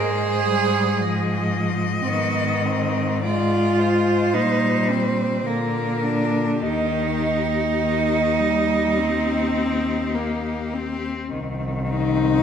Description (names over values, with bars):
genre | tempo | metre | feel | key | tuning
classical, lyrical piece for cello ensemble | 50-57 BPM | 4/4 | rubato | Eb major | A4 = 441 Hz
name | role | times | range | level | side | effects
clear cello | melody | 0.0-12.4 s | Eb4 to Eb5 | -28 LUFS | left 7 dB | none
clear cello | second line | 0.0-12.4 s | Bb3 to Ab4 | -23 LUFS | right 4 dB | none
rich cello | accompaniment | 0.0-12.4 s | D3 to C4 | -26 LUFS | left 3 dB | none
rich cello | bass | 0.0-12.4 s | C2 to Bb2 | -25 LUFS | left 1 dB | none
room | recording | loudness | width
moderate scoring stage reverb, RT60 1.9 s | none | -19 LUFS | side -8 dB against mid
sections
0.0-11.3 A section; 11.3-12.4 B section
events
none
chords
0.0 Ab; 2.1 Fm7/Ab; 4.3 Eb/Bb; 5.5 Bb; 6.6 Eb; 11.3 Cm